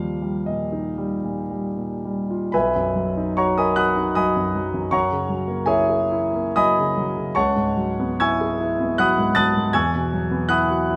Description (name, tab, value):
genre	classical, impressionist solo piano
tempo	75 BPM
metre	3/4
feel	uneven beats, rubato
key	B major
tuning	A4 = 442 Hz
part	clear concert grand piano	solo	0.0-11.0 s	B1 to A6	-22 LUFS	equal	none
room	moderate stone room reverb, RT60 1.3 s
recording	none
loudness	-22 LUFS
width	mono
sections	0.0-2.5 A section; 2.5-11.0 B section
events	none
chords	0.0 Ebadd9; 2.5 Bmaj7; 4.9 F#9; 7.4 C#m11; 9.7 Eadd9